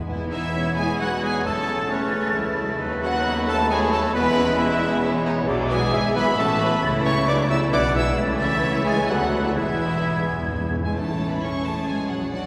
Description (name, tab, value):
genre	quick classical-period movement for symphony orchestra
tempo	133 BPM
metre	3/4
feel	straight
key	E major, A major from 5.5 s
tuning	A4 = 439 Hz
part	clear symphonic violin section	melody	0.0-12.5 s	C#5 to E6	-31 LUFS	equal	none
part	rich chamber viola section	accompaniment	0.0-12.5 s	E3 to E4	-32 LUFS	equal	none
part	timpani	percussion	0.0-2.1, 9.6-10.9 s	E2	-33 LUFS	equal	none
part	bright large flute ensemble	second line	0.1-10.7 s	B5 to A6	-34 LUFS	equal	none
part	rich chamber violin section	second line	0.1-12.5 s	A3 to D5	-33 LUFS	equal	none
part	clear bassoon	accompaniment	0.1-10.7 s	E3 to B3	-35 LUFS	equal	none
part	rich chamber double bass section	bass	0.1-12.5 s	E1 to D#2	-33 LUFS	equal	none
part	warm chamber cello section	bass	0.1-12.5 s	C#2 to C#4	-31 LUFS	equal	none
part	mellow French horn section	sustained chords	0.3-12.5 s	C#3 to E4	-31 LUFS	equal	none
part	clear trumpet	stabs	0.3-10.7 s	C#4 to E5	-31 LUFS	equal	none
part	bright clarinet	second line	0.5-10.7 s	G#4 to F#5	-33 LUFS	equal	none
room	wet church reverb, RT60 3.0 s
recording	recorded in a church or concert hall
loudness	-22 LUFS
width	mono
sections	0.1-10.9 A section; 10.9-12.5 B section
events	timpani fill 9.6-10.9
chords	0.1 E; 1.5 A/E; 2.8 B7/D#; 4.2 E; 5.5 E7/B; 6.4 A; 6.8 A/C#; 7.7 E7/B; 8.2 A/C#; 9.1 Bm/D; 9.6 E; 10.9 A; 11.9 F#7/A#